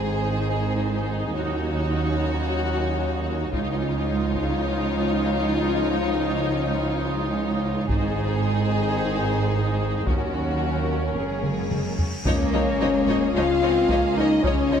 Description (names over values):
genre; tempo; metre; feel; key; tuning
cinematic, epic orchestral film score; 110 BPM; 4/4; straight; unclear; A4 = 440 Hz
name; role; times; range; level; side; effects
rich symphonic violin section; melody; 0.0-14.8 s; Bb4 to F5; -33 LUFS; left 5 dB; none
rich symphonic violin section; second line; 0.0-14.8 s; F4 to Eb5; -30 LUFS; left 3 dB; none
rich symphonic viola section; accompaniment; 0.0-14.8 s; F3 to Eb4; -30 LUFS; right 1 dB; none
mellow French horn section; sustained chords; 0.0-14.8 s; Eb3 to F4; -27 LUFS; left 4 dB; none
rich symphonic cello section; bass; 0.0-14.8 s; Db2 to C4; -28 LUFS; right 3 dB; none
rich symphonic double bass section; bass; 0.0-14.8 s; Gb1 to Eb2; -29 LUFS; right 4 dB; none
taiko ensemble; drums; 3.5-4.6, 7.9-14.8 s; none; -27 LUFS; equal; none
cymbal swell and sub drop; sound effects; 11.6-14.4 s; none; -34 LUFS; equal; none
clear symphonic string section; sustained chords; 12.3-14.8 s; Db4 to Eb5; -32 LUFS; right 1 dB; none
mellow tuba; bass; 12.3-14.8 s; Db2; -29 LUFS; right 4 dB; none
room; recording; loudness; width
moderate scoring stage reverb, RT60 1.7 s; none; -21 LUFS; side -8 dB against mid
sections
0.0-12.3 A section; 12.3-14.8 B section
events
build-up 0.0-12.3; drum fill 11.4-12.3; cymbal swell 11.6-12.3; impact 12.3-14.4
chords
0.0 Ab; 1.4 Ebm7; 3.5 Dbadd9; 7.9 Ab; 10.1 Ebm7; 11.2 Gbadd9; 12.3 Dbadd9